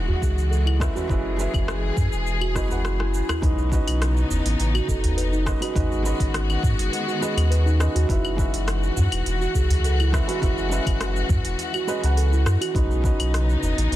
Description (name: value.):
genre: organic downtempo.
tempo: 103 BPM.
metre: 4/4.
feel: straight.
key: unclear.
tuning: A4 = 440 Hz.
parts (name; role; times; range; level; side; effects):
felt-muted upright piano; accompaniment; 0.0-14.0 s; G#3 to F#5; -32 LUFS; right 2 dB; sidechain pumping, tape echo.
warm studio string section; sustained chords; 0.0-14.0 s; C#3 to G#4; -30 LUFS; left 3 dB; sidechain pumping.
warm sub bass; bass; 0.0-14.0 s; E1 to G#2; -22 LUFS; equal; sidechain pumping.
steel tongue drum; arpeggios; 0.1-12.9 s; D#4 to B4; -29 LUFS; right 2 dB; tape echo.
udu; percussion; 0.1-13.7 s; none; -28 LUFS; equal; none.
electronic kick drum; drums; 0.2-13.2 s; none; -25 LUFS; equal; studio ambience.
organic electronic drum kit; drums; 0.2-14.0 s; cabasa, claves, hi-hat, rim click; -31 LUFS; left 1 dB; studio ambience, soft clipping on snare.
room: small room ambience.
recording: dense, heavily limited modern master.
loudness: -20 LUFS.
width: side -14 dB against mid.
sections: 0.0-3.4 A section; 3.4-14.0 B section.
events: drum fill 2.6-3.4.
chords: 0.0 F#7sus2; 3.4 B9; 5.8 G#m7; 8.1 F#7sus2; 12.8 Badd9.